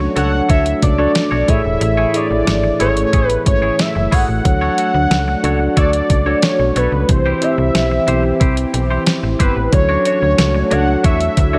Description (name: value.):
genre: 1980s-style pop.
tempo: 91 BPM.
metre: 4/4.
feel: straight.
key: unclear.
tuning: A4 = 439 Hz.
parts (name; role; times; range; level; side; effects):
fat analog lead; melody; 0.0-11.6 s; B4 to F#5; -21 LUFS; equal; none.
mellow tine electric piano; accompaniment; 0.0-11.6 s; A2 to E5; -22 LUFS; equal; none.
lush unison pad; sustained chords; 0.0-11.6 s; E3 to G4; -28 LUFS; equal; chorus.
twangy electric guitar; riff; 0.0-11.6 s; D4 to C#5; -28 LUFS; equal; subtle chorus.
slap-like FM bass; bass; 0.0-11.6 s; E1 to E2; -21 LUFS; equal; none.
clean 12-bit digital drum machine; drums; 0.2-11.5 s; hi-hat, kick drum, snare drum; -19 LUFS; equal; none.
room: light reverb.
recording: none.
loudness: -15 LUFS.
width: mono.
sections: 0.0-11.6 A section.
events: none.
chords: 0.0 Dmaj7; 1.5 Amaj7; 4.5 Dmaj7; 7.1 C; 9.7 Dmaj7.